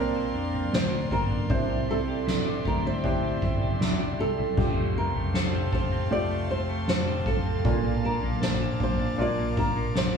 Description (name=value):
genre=pop ballad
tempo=78 BPM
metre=4/4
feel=straight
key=F major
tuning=A4 = 443 Hz
part: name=flamenco guitar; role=melody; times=0.0-10.2 s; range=A4 to D5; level=-31 LUFS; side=right 1 dB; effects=none
part: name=warm grand piano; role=accompaniment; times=0.0-10.2 s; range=Bb2 to C5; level=-32 LUFS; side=right 2 dB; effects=none
part: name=airy breathy pad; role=sustained chords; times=0.0-10.2 s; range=Bb3 to D6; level=-35 LUFS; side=equal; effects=chorus
part: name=semi-hollow electric guitar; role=arpeggios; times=0.0-10.2 s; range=F2 to D5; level=-37 LUFS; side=left 4 dB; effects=none
part: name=fingered electric bass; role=bass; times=0.0-10.2 s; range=E1 to F2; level=-32 LUFS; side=equal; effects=none
part: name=soft-mallet drum kit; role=drums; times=0.5-10.1 s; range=crash cymbal, kick drum, snare drum, toms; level=-28 LUFS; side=equal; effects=none
room=moderate stone room reverb, RT60 1.1 s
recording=band playing live in one room, studio ambience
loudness=-24 LUFS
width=side -6 dB against mid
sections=0.0-4.6 A section; 4.6-10.2 B section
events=none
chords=0.0 Bbadd9; 1.5 Cadd9; 4.6 Fadd9; 7.7 Bbmaj7